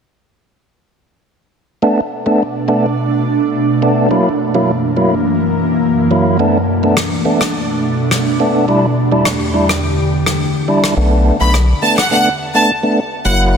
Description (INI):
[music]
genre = dancehall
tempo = 105 BPM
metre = 4/4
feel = straight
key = B minor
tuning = A4 = 440 Hz
[part]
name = tonewheel organ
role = accompaniment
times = 1.8-13.6 s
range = F#3 to E4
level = -15 LUFS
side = equal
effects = overdrive, fast rotary speaker
[part]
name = ethereal airy pad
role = sustained chords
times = 2.4-10.9 s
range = E2 to G4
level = -16 LUFS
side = right 1 dB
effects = ensemble chorus, built-in reverb
[part]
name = rim click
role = drums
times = 7.0-12.1 s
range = none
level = -20 LUFS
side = left 1 dB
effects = none
[part]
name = round analog bass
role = bass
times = 11.0-13.6 s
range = F#1 to B1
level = -12 LUFS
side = equal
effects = none
[part]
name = bright studio violin section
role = melody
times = 11.4-13.4 s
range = F#5 to B5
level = -14 LUFS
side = equal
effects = ping-pong delay
[sound]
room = moderate lush hall reverb, RT60 2.5 s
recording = dense, heavily limited modern master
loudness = -12 LUFS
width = side -6 dB against mid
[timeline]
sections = 1.8-11.0 A section; 11.0-13.6 B section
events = kick muted 11.0-13.6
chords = 1.8 Bm7; 4.1 F#7; 6.4 Bm7; 8.7 Em7; 11.0 Bm7